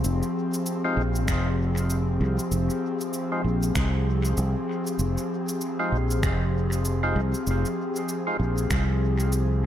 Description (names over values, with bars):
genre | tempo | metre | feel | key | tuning
ambient dub | 97 BPM | 4/4 | swing 59% on 16ths | F minor | A4 = 441 Hz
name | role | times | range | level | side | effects
airy breathy pad | sustained chords | 0.0-9.7 s | F3 to Ab4 | -28 LUFS | left 1 dB | chorus
fingered electric bass | bass | 0.0-9.7 s | F1 to C2 | -24 LUFS | equal | tube saturation
electronic cabasa and finger snaps | drums | 0.0-9.5 s | none | -34 LUFS | equal | overdrive, dub echo
percussive tonewheel organ | stabs | 0.8-8.4 s | Ab3 to C5 | -32 LUFS | equal | slow rotary speaker, vintage 12-bit sampler grit, dub echo
electronic kick drum | drums | 1.3-8.9 s | none | -29 LUFS | equal | none
room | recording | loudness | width
light reverb, digital ambience | none | -23 LUFS | side -11 dB against mid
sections
0.0-9.7 A section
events
none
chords
0.0 Fm7